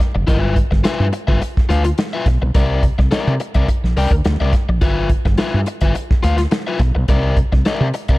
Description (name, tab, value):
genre	funk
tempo	106 BPM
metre	4/4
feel	straight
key	G mixolydian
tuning	A4 = 442 Hz
part	crunchy overdriven guitar	accompaniment	0.0-8.2 s	F4 to G5	-22 LUFS	left 4 dB	none
part	warm soul drum kit	drums	0.0-8.2 s	hi-hat, kick drum, snare drum	-18 LUFS	equal	none
part	woody fretless electric bass	bass	0.2-8.2 s	F#1 to C3	-17 LUFS	equal	tube saturation
room	little or no reverb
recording	dark, warm production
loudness	-14 LUFS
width	side -20 dB against mid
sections	0.0-8.2 A section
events	none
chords	0.3 G6; 2.5 C9; 4.8 G6; 7.1 C9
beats	| 0.28 0.85 1.41 1.98 | 2.55 3.12 3.68 4.25 | 4.82 5.38 5.95 6.52 | 7.09 7.66